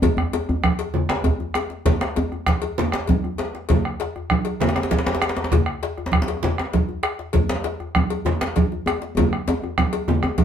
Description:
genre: west african traditional, West African drum ensemble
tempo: 131 BPM (dotted quarters)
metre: 12/8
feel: straight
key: none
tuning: none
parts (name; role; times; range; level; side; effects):
- bombo; percussion; 0.0-10.4 s; none; -23 LUFS; right 1 dB; none
- congas; percussion; 0.0-10.4 s; none; -24 LUFS; right 4 dB; none
- cowbell; percussion; 0.0-10.4 s; none; -29 LUFS; left 7 dB; none
- djembe; percussion; 0.0-10.4 s; none; -28 LUFS; left 4 dB; none
- djembe; percussion; 0.0-10.4 s; none; -25 LUFS; equal; none
room: wet studio reverb, RT60 0.6 s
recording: band playing live in one room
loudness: -20 LUFS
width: side -8 dB against mid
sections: 0.0-10.4 A section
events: drum fill 9.2-10.4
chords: none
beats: | 0.03 0.48 0.94 1.40 | 1.86 2.32 2.78 3.24 | 3.69 4.15 4.61 5.07 | 5.52 5.98 6.44 6.89 | 7.35 7.80 8.26 8.72 | 9.17 9.63 10.08

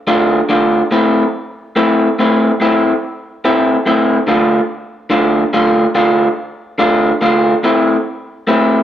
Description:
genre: blues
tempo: 143 BPM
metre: 4/4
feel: swing 66% on 8ths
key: A minor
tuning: A4 = 440 Hz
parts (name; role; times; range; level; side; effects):
- electric guitar through a small old amp; solo; 0.1-8.8 s; A2 to F4; -11 LUFS; equal; spring reverb
room: moderate studio reverb, RT60 0.5 s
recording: none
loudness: -11 LUFS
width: side -11 dB against mid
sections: 0.0-8.8 A section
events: none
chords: 0.0 Dm; 0.9 Am; 4.3 Dm; 7.6 Am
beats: 0.08 0.50 | 0.92 1.34 1.76 2.18 | 2.60 3.02 3.44 3.86 | 4.28 4.70 5.12 5.54 | 5.96 6.38 6.80 7.22 | 7.64 8.06 8.48

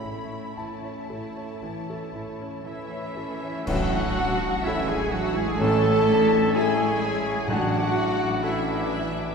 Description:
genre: classical, romantic movement for piano and orchestra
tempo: 56-64 BPM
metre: 4/4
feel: rubato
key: A major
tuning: A4 = 440 Hz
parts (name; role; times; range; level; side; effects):
- clear concert grand piano; melody; 0.0-9.3 s; A1 to B5; -30 LUFS; left 2 dB; none
- warm symphonic violin section; melody; 0.0-9.3 s; C#5 to F#6; -39 LUFS; left 4 dB; none
- clear symphonic violin section; second line; 0.0-9.3 s; E5 to B5; -34 LUFS; left 2 dB; none
- rich symphonic viola section; accompaniment; 0.0-9.3 s; A3 to A4; -28 LUFS; right 2 dB; none
- clear French horn section; sustained chords; 0.0-7.8 s; E3 to D4; -37 LUFS; left 2 dB; none
- clear symphonic cello section; bass; 0.0-9.3 s; E3 to E4; -31 LUFS; equal; none
- clear symphonic double bass section; bass; 0.0-9.3 s; A1; -36 LUFS; right 2 dB; none
- warm clarinet; second line; 2.6-9.1 s; C#4 to E4; -34 LUFS; left 1 dB; none
- clear trumpet; stabs; 2.6-9.1 s; E4 to A4; -32 LUFS; equal; none
- clear oboe; second line; 2.7-9.1 s; E4 to A4; -36 LUFS; equal; none
- silver concert flute; second line; 2.7-9.1 s; E5 to A5; -35 LUFS; left 2 dB; none
- clash cymbals and concert bass drum; percussion; 3.7-5.6 s; none; -36 LUFS; equal; none
- mellow bassoon; accompaniment; 5.6-9.3 s; C#4 to E4; -34 LUFS; equal; none
- timpani; percussion; 7.5-8.9 s; A2; -36 LUFS; equal; none
room: wet church reverb, RT60 2.8 s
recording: heard from further back in the room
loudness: -21 LUFS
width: side -5 dB against mid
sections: 0.0-3.7 A section; 3.7-9.3 B section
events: band accent 3.7-4.6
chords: 0.0 A; 7.5 D/A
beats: 0.57 1.62 2.64 | 3.66 4.64 5.59 6.54 | 7.48 8.42

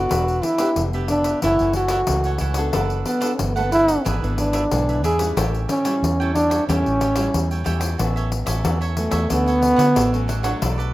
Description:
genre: samba and choro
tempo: 91 BPM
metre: 4/4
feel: straight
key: unclear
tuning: A4 = 440 Hz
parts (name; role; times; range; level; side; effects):
- breathy trombone; melody; 0.0-10.3 s; A3 to G#4; -20 LUFS; equal; none
- cavaquinho; accompaniment; 0.0-10.9 s; D4 to G5; -30 LUFS; right 7 dB; none
- nylon-string guitar; accompaniment; 0.0-10.9 s; F#2 to A4; -29 LUFS; left 2 dB; none
- vintage muted fingered electric bass; bass; 0.0-10.9 s; E1 to D3; -23 LUFS; equal; none
- pandeiro; percussion; 0.1-10.9 s; none; -27 LUFS; left 3 dB; none
room: small room reverb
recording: rough home demo mix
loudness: -18 LUFS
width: side -16 dB against mid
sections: 0.0-8.0 A section; 8.0-10.9 B section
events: trombone solo 8.0-10.9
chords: 0.1 Em7; 1.4 F#m7; 2.7 D6/F#; 4.1 E7/G#; 5.4 A7; 8.0 A69; 9.3 Dmaj7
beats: | 0.11 0.77 1.43 2.08 | 2.74 3.40 4.06 4.72 | 5.37 6.03 6.69 7.35 | 8.00 8.66 9.32 9.97 | 10.63

